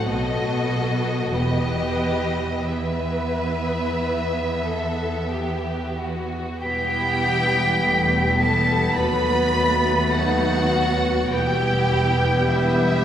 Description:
classical; 44-54 BPM; 4/4; rubato; E minor; A4 = 440 Hz
warm symphonic violin section; melody; 0.0-13.0 s; D#5 to B5; -27 LUFS; left 2 dB
rich studio violin section; second line; 0.0-13.0 s; E4 to B4; -27 LUFS; equal
rich studio viola section; accompaniment; 0.0-13.0 s; E3 to G4; -29 LUFS; right 2 dB
clear studio double bass section; bass; 0.0-13.0 s; E1 to D#2; -26 LUFS; right 1 dB
rich chamber cello section; bass; 0.0-13.0 s; D#2 to B2; -28 LUFS; right 1 dB
silver concert flute; second line; 6.6-13.0 s; G6 to B6; -25 LUFS; equal
warm bassoon; accompaniment; 6.6-13.0 s; B3; -27 LUFS; equal
warm French horn section; sustained chords; 6.6-13.0 s; G3 to B3; -27 LUFS; left 1 dB
wet concert hall reverb, RT60 2.4 s; recorded in a church or concert hall; -19 LUFS; side -10 dB against mid
0.0-6.6 A section; 6.6-13.0 B section
0.1 B7; 1.3 Em; 9.0 B7/D#; 11.3 Em
0.06 | 1.34 2.67 4.01 5.31 | 6.63 7.83 8.96 10.13 | 11.32 12.50

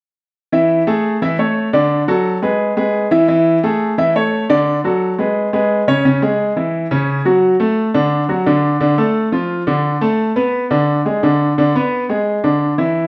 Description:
latin; 174 BPM; 4/4; straight; A major; A4 = 440 Hz
bright baby grand piano; solo; 0.5-13.1 s; C#3 to E5; -16 LUFS; equal
wet large studio reverb, RT60 0.8 s; heard from further back in the room; -16 LUFS; mono
0.5-6.0 A section; 6.0-13.1 B section
0.5 A5; 1.2 Aadd11; 1.9 Bm7; 2.6 E; 3.3 A5; 4.0 Aadd11; 4.7 Bm7; 5.4 G#madd11; 6.0 C#madd11; 7.4 D; 8.8 Dm; 10.2 Bm7; 10.9 N.C.; 11.6 E7
| 0.53 0.87 1.22 1.56 | 1.91 2.25 2.60 2.94 | 3.29 3.63 3.98 4.32 | 4.67 5.01 5.36 5.70 | 6.05 6.39 6.74 7.08 | 7.43 7.78 8.12 8.46 | 8.81 9.16 9.50 9.85 | 10.19 10.54 10.88 11.23 | 11.57 11.92 12.26 12.61 | 12.95

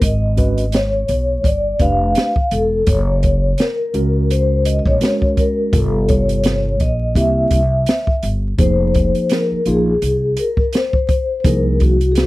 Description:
hip hop, jazz-hop; 84 BPM; 4/4; swing 58% on 16ths; F minor; A4 = 440 Hz
vibraphone with soft mallets; melody; 0.0-12.3 s; Gb4 to F5; -19 LUFS; left 2 dB
upright bass; bass; 0.0-12.3 s; E1 to Db2; -18 LUFS; equal
open jazz drum kit; drums; 0.0-12.3 s; hi-hat, kick drum, snare drum; -18 LUFS; equal
mellow tine electric piano; accompaniment; 0.4-12.0 s; C3 to Cb5; -20 LUFS; right 1 dB; medium stereo tremolo
little or no reverb; dry, close 1970s-style studio recording, vinyl crackle; -14 LUFS; side -18 dB against mid
0.0-8.6 A section; 8.6-12.3 B section
0.0 Abm7; 1.4 G9; 2.9 Gb; 5.7 Gm7b5; 7.2 C7; 8.6 Fm7; 11.4 Ab13/C
| 0.02 0.73 1.45 2.16 | 2.87 3.59 4.30 5.02 | 5.73 6.45 7.16 7.87 | 8.59 9.30 10.02 10.73 | 11.45 12.16

